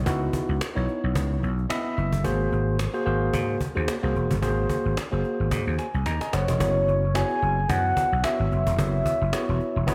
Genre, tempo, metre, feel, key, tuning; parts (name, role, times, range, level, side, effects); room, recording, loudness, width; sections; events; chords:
early-eighties boogie funk; 110 BPM; 4/4; swing 56% on 16ths; A4 = 442 Hz
vintage slap bass; bass; 0.0-9.9 s; E1 to G#2; -28 LUFS; equal
tine electric piano; accompaniment; 0.1-9.9 s; A#3 to B5; -30 LUFS; equal; slapback echo
cajon; drums; 0.1-9.9 s; -33 LUFS; equal
soft octave-layered synth lead; melody; 6.3-9.8 s; C#5 to G#5; -28 LUFS; equal; chorus
moderate lush hall reverb, RT60 2.1 s; big arena sound; -25 LUFS; mono
0.0-6.6 A section; 6.6-9.9 B section
tine electric piano fill 1.4-2.2, 5.5-6.6; drum fill 5.5-6.6
0.0 C#m9; 2.2 G#9; 6.6 F#7sus4